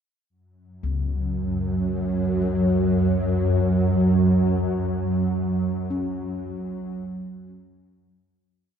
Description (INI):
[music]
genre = dark ambient drone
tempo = 57 BPM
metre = 4/4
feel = straight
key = unclear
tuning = A4 = 439 Hz
[part]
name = swarming drone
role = drone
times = 1.2-8.8 s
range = F#2 to F#3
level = -22 LUFS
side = right 1 dB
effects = built-in reverb
[part]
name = gamelan-type bossed gongs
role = arpeggios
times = 0.8-8.8 s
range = C#2 to C#4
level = -29 LUFS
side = left 2 dB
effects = diffuse ambient delay
[sound]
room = wet cathedral reverb, RT60 6.3 s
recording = in a vast, echoing space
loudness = -21 LUFS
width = side -8 dB against mid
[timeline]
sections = 0.3-8.7 A section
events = fade-out 4.5-8.7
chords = 0.3 F#5